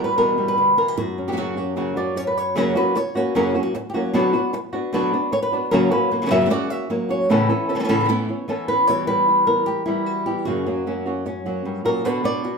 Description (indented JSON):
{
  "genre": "flamenco",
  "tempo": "152 BPM",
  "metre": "4/4",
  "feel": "straight",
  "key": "F# phrygian dominant",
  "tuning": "A4 = 440 Hz",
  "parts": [
    { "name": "flamenco guitar", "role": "melody", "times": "0.0-12.6 s", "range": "F#2 to E5", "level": "-19 LUFS", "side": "equal", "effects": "none" },
    { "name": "flamenco guitar", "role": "stabs", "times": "0.0-12.5 s", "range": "E2 to F#4", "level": "-26 LUFS", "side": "right 3 dB", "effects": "none" }
  ],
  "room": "moderate large studio reverb, RT60 1.1 s",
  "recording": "band playing live in one room",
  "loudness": "-18 LUFS",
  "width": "side -5 dB against mid",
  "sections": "0.0-2.6 A section; 2.6-8.9 B section; 8.9-12.6 C section",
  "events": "none",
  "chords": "0.0 Emadd9; 1.0 F#; 4.1 Bm; 5.7 F#; 7.3 Aadd9; 8.9 Em; 10.5 F#; 12.0 Bm",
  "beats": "0.18 0.58 | 0.97 1.37 1.77 2.16 | 2.56 2.95 3.35 3.75 | 4.14 4.54 4.93 5.33 | 5.72 6.12 6.51 6.91 | 7.30 7.70 8.09 8.49 | 8.88 9.28 9.67 10.07 | 10.47 10.86 11.26 11.65 | 12.05 12.45"
}